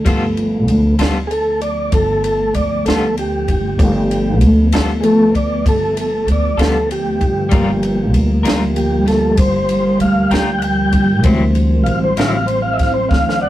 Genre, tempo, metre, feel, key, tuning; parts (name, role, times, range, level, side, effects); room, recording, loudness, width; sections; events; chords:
slow blues; 64 BPM (dotted quarters); 12/8; straight; A4 = 440 Hz
electric guitar at the edge of break-up; accompaniment; 0.0-12.4 s; D3 to Bb4; -20 LUFS; left 3 dB; tremolo
mellow tonewheel organ; sustained chords; 0.0-13.5 s; E3 to G5; -16 LUFS; equal; slow rotary speaker
shimmering ambient pad; sustained chords; 1.3-13.5 s; E3 to C4; -22 LUFS; left 1 dB; chorus, built-in reverb, phaser
upright bass; bass; 0.0-13.5 s; G1 to D2; -18 LUFS; equal
compact cocktail drum kit; drums; 0.1-13.4 s; kick drum, ride cymbal, snare drum; -20 LUFS; equal
moderate small room reverb, RT60 0.5 s; rough rehearsal-room recording; -13 LUFS; side -14 dB against mid
0.0-13.5 A section
tonewheel organ solo 0.0-13.5; drum fill 13.1-13.5
0.1 G9; 7.5 Gm7; 11.2 D9